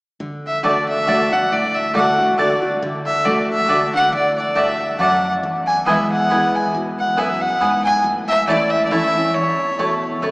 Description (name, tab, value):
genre	bluegrass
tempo	138 BPM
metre	3/4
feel	swing 54% on 8ths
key	D major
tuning	A4 = 440 Hz
part	picked steel-string acoustic guitar	accompaniment	0.2-10.3 s	E2 to F#4	-22 LUFS	equal	none
part	bright fiddle	melody	0.5-10.2 s	C#5 to G#5	-18 LUFS	equal	none
part	mandolin	stabs	0.6-10.3 s	A3 to A5	-21 LUFS	equal	none
room	wet cathedral reverb, RT60 4.7 s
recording	recorded in a church or concert hall, small speaker sound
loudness	-15 LUFS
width	side -28 dB against mid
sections	0.2-10.3 A section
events	none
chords	0.2 D; 5.4 E; 8.0 A